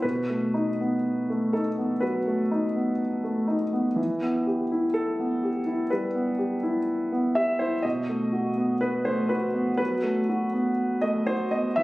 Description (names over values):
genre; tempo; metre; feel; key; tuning
neoclassical minimalist piano; 62 BPM; 4/4; rubato; unclear; A4 = 441 Hz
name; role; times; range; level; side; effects
warm upright piano; solo; 0.0-11.8 s; B2 to E5; -24 LUFS; equal; none
room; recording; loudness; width
light reverb; recorded on a phone in the room, studio reverb; -24 LUFS; side -18 dB against mid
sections
0.0-11.8 A section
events
none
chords
0.0 B7; 4.0 Em; 7.8 B7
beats
| 0.03 1.04 2.02 3.00 | 3.98 4.96 5.92 6.88 | 7.84 8.82 9.79 10.79 | 11.78